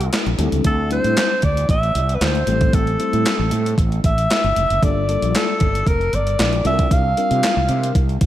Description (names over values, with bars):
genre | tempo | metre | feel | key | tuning
early-eighties boogie funk | 115 BPM | 4/4 | straight | G dorian | A4 = 440 Hz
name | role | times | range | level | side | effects
breathy alto saxophone | melody | 0.0-8.0 s | A4 to F5 | -21 LUFS | equal | slapback echo
fretless electric bass | bass | 0.0-8.3 s | F1 to C3 | -20 LUFS | right 1 dB | lush chorus
crisp 8-bit digital drum machine | drums | 0.0-8.3 s | handclaps, hi-hat, kick drum, snare drum | -20 LUFS | equal | overdrive
FM electric piano with soft pad layer | accompaniment | 0.4-8.0 s | G3 to C5 | -26 LUFS | left 4 dB | chorus, tremolo
room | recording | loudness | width
moderate concert hall reverb, RT60 2.2 s | big arena sound | -16 LUFS | side -13 dB against mid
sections
0.0-8.3 A section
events
none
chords
0.4 D9sus4; 2.5 Am7; 4.8 Gm9; 6.7 C9sus4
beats
0.13 | 0.65 1.17 1.69 2.21 | 2.74 3.26 3.78 4.30 | 4.82 5.35 5.87 6.39 | 6.91 7.43 7.96